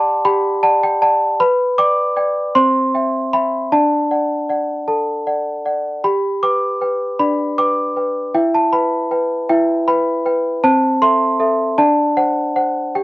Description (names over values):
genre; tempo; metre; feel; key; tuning
classical, lullaby for celesta; 52 BPM (dotted quarters); 6/8; straight; unclear; A4 = 444 Hz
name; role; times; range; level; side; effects
celesta; solo; 0.0-13.0 s; C4 to D6; -14 LUFS; equal; none
room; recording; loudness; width
light reverb; dry, close 1970s-style studio recording; -14 LUFS; side -20 dB against mid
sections
0.0-13.0 A section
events
none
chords
0.0 D/G; 1.4 G/B; 2.5 C; 3.7 D; 6.0 G; 8.3 Em; 10.6 Am/C; 11.8 D7